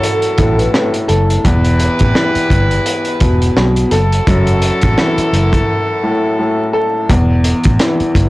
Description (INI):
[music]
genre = hip hop, boom-bap hip-hop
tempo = 85 BPM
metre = 4/4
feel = swing 57% on 16ths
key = E minor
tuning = A4 = 440 Hz
[part]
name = vibraphone with soft mallets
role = melody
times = 0.0-0.9 s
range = A4 to B4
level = -18 LUFS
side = equal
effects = high-pass filter, low-pass filter, tape echo
[part]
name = warm upright piano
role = accompaniment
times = 0.0-8.3 s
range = E2 to A4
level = -16 LUFS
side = left 1 dB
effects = high-pass filter, low-pass filter
[part]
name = clear horn section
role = stabs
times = 0.0-6.7 s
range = E4 to B4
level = -19 LUFS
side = equal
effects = high-pass filter, low-pass filter, tape echo
[part]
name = crunchy breakbeat drum kit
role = drums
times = 0.0-8.3 s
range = hi-hat, kick drum, rim click, snare drum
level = -16 LUFS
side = equal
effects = none
[part]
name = vintage muted fingered electric bass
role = bass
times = 0.4-8.3 s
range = E1 to B1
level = -14 LUFS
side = equal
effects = transformer saturation
[sound]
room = light reverb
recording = blown-out, overdriven recording, vinyl crackle, overdrive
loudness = -11 LUFS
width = side -19 dB against mid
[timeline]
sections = 0.0-7.1 A section; 7.1-8.3 B section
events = break 5.7-7.1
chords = 0.0 F#m7; 1.4 Em; 3.9 F#m7; 7.1 Em